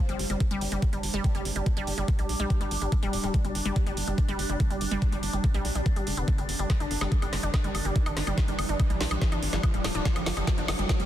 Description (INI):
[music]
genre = psychedelic trance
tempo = 143 BPM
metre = 4/4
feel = straight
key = G major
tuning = A4 = 443 Hz
[part]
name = overtone-sweeping drone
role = sustained chords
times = 0.0-11.1 s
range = D4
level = -37 LUFS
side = equal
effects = chorus, built-in reverb, phaser, sidechain pumping
[part]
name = riser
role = sound effects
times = 3.6-11.1 s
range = none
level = -37 LUFS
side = right 1 dB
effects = none
[part]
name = wide unison pluck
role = riff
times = 0.1-11.1 s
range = G3 to D4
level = -33 LUFS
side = moving between left 4 dB and right 4 dB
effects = auto-pan, sidechain pumping, ping-pong delay
[part]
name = tight sequencer bass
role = bass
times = 0.1-11.1 s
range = D1 to B1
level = -32 LUFS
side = equal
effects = none
[part]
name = garage drum kit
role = drums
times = 0.1-11.1 s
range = hi-hat, snare drum, woodblock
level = -33 LUFS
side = right 1 dB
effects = overdrive, studio reverb
[part]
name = electronic kick drum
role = drums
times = 0.4-11.0 s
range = none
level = -26 LUFS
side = equal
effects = overdrive, studio reverb
[sound]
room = light reverb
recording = dense, heavily limited modern master, faint mains hum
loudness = -25 LUFS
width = side -12 dB against mid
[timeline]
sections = 0.0-11.1 A section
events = build-up 0.0-11.1; filter sweep on synth arpeggio sound 0.0-11.1; riser 3.6-11.1; drum fill 6.7-11.1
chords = 0.0 G5